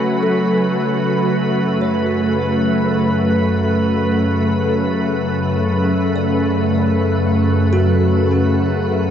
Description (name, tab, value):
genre	ambient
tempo	free time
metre	none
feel	none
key	unclear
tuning	A4 = 440 Hz
part	soft additive organ-like pad	sustained chords	0.0-9.1 s	F#2 to G#5	-16 LUFS	equal	ensemble chorus, built-in reverb
part	bowed-like drone	drone	0.0-9.1 s	C#3 to F#3	-24 LUFS	equal	built-in reverb
part	drifting glass-harmonics texture	texture	0.0-9.1 s	B4 to B5	-27 LUFS	right 2 dB	chorus, built-in reverb, shimmer reverb
part	kalimba	arpeggios	0.2-9.1 s	F#4 to D5	-27 LUFS	equal	diffuse ambient delay
room	wet huge ambient reverb, RT60 8.1 s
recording	dark, warm production, nothing above 7.8 kHz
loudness	-14 LUFS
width	side -9 dB against mid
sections	0.0-9.1 A section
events	fade-in on kalimba 0.0-9.1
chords	0.0 F#madd9; 1.4 Bm9/F#